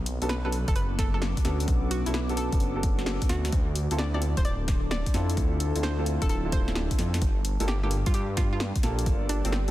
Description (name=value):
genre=UK garage, two-step garage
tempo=130 BPM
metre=4/4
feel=swing 67% on 16ths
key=unclear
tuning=A4 = 440 Hz
part: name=dark detuned saw bass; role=bass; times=0.0-9.7 s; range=D1 to G2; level=-28 LUFS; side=equal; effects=none
part: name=warbly tape-like pad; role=texture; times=0.0-9.7 s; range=B3 to D6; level=-38 LUFS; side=equal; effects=chorus, built-in reverb, phaser, sidechain pumping
part: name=punchy analog drum machine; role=drums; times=0.1-9.7 s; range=hi-hat, snare drum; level=-34 LUFS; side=left 1 dB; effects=overdrive, studio reverb
part: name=dark grand piano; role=stabs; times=0.2-9.7 s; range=Bb3 to A4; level=-34 LUFS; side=left 1 dB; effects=dub echo
part: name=hollow square pluck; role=melody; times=0.3-9.6 s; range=C4 to D5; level=-36 LUFS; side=right 1 dB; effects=chorus, dub echo
part: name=electronic kick drum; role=drums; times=0.7-9.2 s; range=none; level=-26 LUFS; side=equal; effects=overdrive, studio reverb
room=little or no reverb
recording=dense, heavily limited modern master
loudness=-24 LUFS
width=side -15 dB against mid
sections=0.0-9.7 A section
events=none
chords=0.0 Bm9; 3.5 Dm9; 7.2 Gm9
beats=0.29 0.76 1.22 | 1.68 2.14 2.60 3.06 | 3.52 3.99 4.45 4.91 | 5.37 5.83 6.29 6.76 | 7.22 7.68 8.14 8.60 | 9.06 9.53